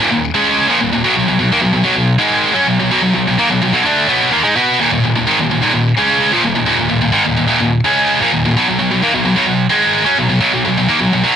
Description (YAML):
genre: metal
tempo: 128 BPM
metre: 4/4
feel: straight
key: unclear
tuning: A4 = 441 Hz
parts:
  - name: scooped high-gain guitar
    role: solo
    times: 0.0-11.3 s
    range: Eb2 to B4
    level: -11 LUFS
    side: equal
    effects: distortion, cassette tape
room: light reverb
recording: home recording on cassette, nothing above 10.8 kHz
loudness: -11 LUFS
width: side -8 dB against mid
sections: 0.0-11.4 A section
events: none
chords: 0.0 Eb5; 1.0 B5; 4.8 Eb5; 8.5 B5